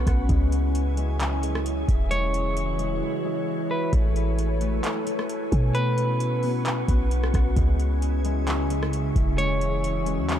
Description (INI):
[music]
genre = hip hop, atmospheric cloud-rap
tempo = 132 BPM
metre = 4/4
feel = half-time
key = E major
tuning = A4 = 440 Hz
[part]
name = glassy FM pad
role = sustained chords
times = 0.0-10.4 s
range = C#3 to G#5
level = -28 LUFS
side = equal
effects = ensemble chorus, built-in reverb, sidechain pumping
[part]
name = concert harp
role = arpeggios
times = 0.0-10.4 s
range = G#3 to G#5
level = -34 LUFS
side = left 6 dB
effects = low-pass filter, ping-pong delay
[part]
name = clean 808-style bass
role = bass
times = 0.0-10.4 s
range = E1 to B2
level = -25 LUFS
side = equal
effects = none
[part]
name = wind-like tuned noise texture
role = texture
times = 0.0-10.4 s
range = G#4 to C#6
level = -40 LUFS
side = equal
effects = built-in reverb
[part]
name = booming analog drum machine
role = drums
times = 0.1-10.4 s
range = handclaps, hi-hat, kick drum, rim click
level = -26 LUFS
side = equal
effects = overdrive
[part]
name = clean electric guitar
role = melody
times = 2.1-10.4 s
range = B4 to C#5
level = -31 LUFS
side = right 1 dB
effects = low-pass filter, ping-pong delay
[sound]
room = light reverb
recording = none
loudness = -22 LUFS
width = side -10 dB against mid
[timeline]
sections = 0.0-10.4 A section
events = drums muted 3.0-3.9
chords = 0.3 C#m; 3.9 Amaj7; 5.7 Bsus2; 7.6 C#m